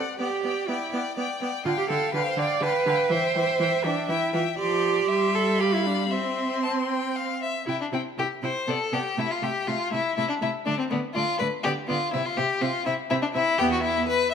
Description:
quick classical-period movement for string quartet; 122 BPM; 3/4; rubato; C major; A4 = 440 Hz
rich violin; melody; 0.0-13.8 s; D5 to C6; -33 LUFS; left 10 dB
clear violin; second line; 0.0-14.3 s; B3 to A5; -27 LUFS; left 4 dB
rich cello; bass; 0.0-14.0 s; E2 to D5; -28 LUFS; right 6 dB
rich viola; accompaniment; 0.2-13.8 s; D3 to E4; -30 LUFS; right 2 dB
moderate scoring stage reverb, RT60 2.1 s; -23 LUFS; side -7 dB against mid
0.0-7.7 A section; 7.7-14.3 B section
0.2 G/B; 1.7 G7/D; 3.1 C/E; 4.6 Dm7/F; 5.1 C/G; 5.6 G7; 6.1 C; 8.7 G/C; 9.2 Am/C; 10.7 D5; 11.7 Bdim/D; 12.1 C; 13.6 Em
| 0.19 0.68 1.17 | 1.66 2.14 2.63 | 3.12 3.61 4.10 | 4.60 5.09 5.60 | 6.12 6.64 7.16 | 7.67 8.18 8.68 | 9.18 9.68 10.18 | 10.67 11.16 11.65 | 12.14 12.62 13.11 | 13.60 14.08

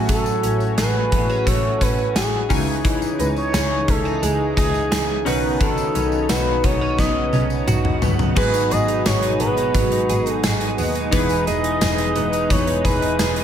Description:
1980s-style pop; 87 BPM; 4/4; straight; A4 = 441 Hz
chorused retro synth keys; accompaniment; 0.0-13.4 s; G#2 to G#5; -27 LUFS; left 2 dB; shimmer reverb
brassy analog pad; sustained chords; 0.0-13.4 s; A2 to F#4; -27 LUFS; left 2 dB; chorus, tremolo, shimmer reverb
direct-recorded clean electric guitar; riff; 0.0-13.4 s; D#3 to A4; -26 LUFS; right 4 dB; ensemble chorus, shimmer reverb
rich double bass; bass; 0.0-13.4 s; E1 to D#2; -25 LUFS; equal
expressive synth lead; melody; 0.1-13.4 s; G#4 to D#5; -23 LUFS; right 1 dB; chorus, ping-pong delay, shimmer reverb
gated 80s drum kit; drums; 0.1-13.4 s; crash cymbal, hi-hat, kick drum, snare drum, tambourine, toms; -22 LUFS; equal; gated reverb
tambourine; percussion; 0.1-13.4 s; -37 LUFS; left 10 dB
mellow synth brass; stabs; 8.4-13.4 s; E3 to B4; -29 LUFS; equal; chorus, ping-pong delay, shimmer reverb
light reverb, small room ambience; -17 LUFS; side -9 dB against mid
0.0-8.4 A section; 8.4-13.4 B section
drum fill 7.0-8.4
0.0 F#madd9/A; 2.5 C#madd9; 5.3 Badd9; 8.4 G#m7; 11.1 Emaj7
| 0.09 0.78 1.47 2.16 | 2.85 3.54 4.23 4.92 | 5.61 6.30 6.99 7.67 | 8.37 9.05 9.74 10.43 | 11.12 11.81 12.50 13.19

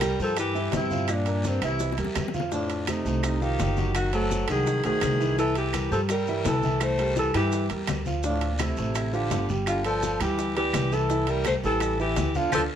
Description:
Afro-Cuban jazz; 168 BPM; 4/4; straight; C mixolydian; A4 = 439 Hz
breathy alto saxophone; melody; 0.0-12.6 s; C4 to C5; -28 LUFS; equal; tape echo
breathy baritone saxophone; second line; 0.0-12.6 s; G2 to A3; -31 LUFS; left 4 dB
warm concert grand piano; accompaniment; 0.0-12.6 s; E3 to G5; -31 LUFS; right 4 dB
upright bass; bass; 0.0-12.7 s; F#1 to G2; -29 LUFS; equal
bongos; percussion; 0.0-12.6 s; -36 LUFS; left 7 dB
claves; percussion; 0.0-12.6 s; -39 LUFS; right 4 dB
congas; percussion; 0.0-12.6 s; -36 LUFS; left 6 dB
guiro; percussion; 0.0-12.6 s; -41 LUFS; left 2 dB
maracas; percussion; 0.0-12.6 s; -42 LUFS; right 5 dB
timbales; percussion; 0.0-12.6 s; -36 LUFS; right 7 dB
light reverb; -23 LUFS; side -9 dB against mid
0.0-12.8 A section
drum fill 1.8-2.5; band accent 12.5
0.0 C7; 1.1 Gm7; 1.8 C7; 2.5 F13; 3.9 F#dim7; 5.4 C13; 8.2 Dm7; 9.7 G13; 11.1 C6; 11.8 A5
0.02 0.38 0.73 | 1.09 1.45 1.80 2.16 | 2.52 2.88 3.23 3.59 | 3.95 4.31 4.66 5.02 | 5.38 5.74 6.09 6.45 | 6.81 7.17 7.52 7.88 | 8.24 8.60 8.95 9.31 | 9.67 10.03 10.38 10.74 | 11.10 11.46 11.81 12.17 | 12.53

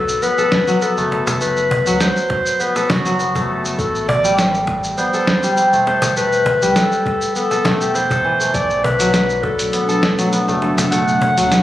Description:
organic downtempo; 101 BPM; 4/4; swing 53% on 16ths; A4 = 437 Hz
warm clarinet; melody; 0.0-11.6 s; F#4 to F#5; -18 LUFS; left 1 dB; digital delay, shimmer reverb
kora; arpeggios; 0.0-11.6 s; E3 to A4; -19 LUFS; equal; tape echo, shimmer reverb
round analog bass; bass; 0.0-11.5 s; E1 to D2; -27 LUFS; equal; sidechain pumping
dusty soul sampler-style drum kit; drums; 0.1-11.6 s; hi-hat, shaker, snare drum; -21 LUFS; equal
electronic kick drum; drums; 0.5-10.2 s; -26 LUFS; equal; overdrive
cajon; percussion; 1.1-11.3 s; -24 LUFS; equal
airy breathy pad; sustained chords; 8.5-11.6 s; B2 to A4; -20 LUFS; equal; chorus, sidechain pumping
moderate echo chamber reverb, RT60 1.6 s, digital ambience; recorded on a phone in the room, club reverb, compression; -14 LUFS; side -14 dB against mid
0.0-11.6 A section
0.0 B7(no3); 3.8 Am; 8.5 Bm7
0.23 0.82 | 1.41 2.01 2.60 3.20 | 3.79 4.38 4.98 5.57 | 6.17 6.76 7.35 7.95 | 8.54 9.14 9.73 10.32 | 10.92 11.51

